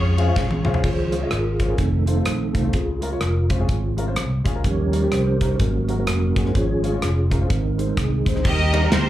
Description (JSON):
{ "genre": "uptempo gospel", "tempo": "126 BPM", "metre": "4/4", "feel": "swing 60% on 8ths", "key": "Db major", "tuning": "A4 = 440 Hz", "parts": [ { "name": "bright studio string section", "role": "melody", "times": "0.0-0.7, 8.4-9.1 s", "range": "F4 to Eb5", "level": "-24 LUFS", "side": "right 1 dB", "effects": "plate reverb, slapback echo" }, { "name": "mellow tonewheel organ", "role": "sustained chords", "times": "0.0-9.1 s", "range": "Db3 to Db5", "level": "-24 LUFS", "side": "right 3 dB", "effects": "fast rotary speaker, chorus vibrato, plate reverb" }, { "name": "fingered electric bass", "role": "bass", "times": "0.0-9.1 s", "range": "F1 to F2", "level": "-22 LUFS", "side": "equal", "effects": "none" }, { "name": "warm baby grand piano", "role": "accompaniment", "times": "0.2-9.1 s", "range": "Ab2 to F5", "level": "-28 LUFS", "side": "left 4 dB", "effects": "plate reverb, slapback echo" }, { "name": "modern studio drum kit", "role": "drums", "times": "0.2-9.1 s", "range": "crash cymbal, hi-hat, kick drum, ride cymbal, rim click, snare drum, toms", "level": "-23 LUFS", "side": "equal", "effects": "none" } ], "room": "light reverb", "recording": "live gig heard through the venue's PA, club reverb", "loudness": "-18 LUFS", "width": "side -13 dB against mid", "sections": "0.8-8.4 A section", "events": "drum fill 0.4-0.8; tonewheel organ solo 0.8-8.4", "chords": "0.0 Dbmaj7; 1.8 F7; 2.7 Bbm7; 4.6 Eb7; 5.6 Ab9sus4; 6.5 Db/Ab; 7.5 Ab; 8.4 Ebmaj7" }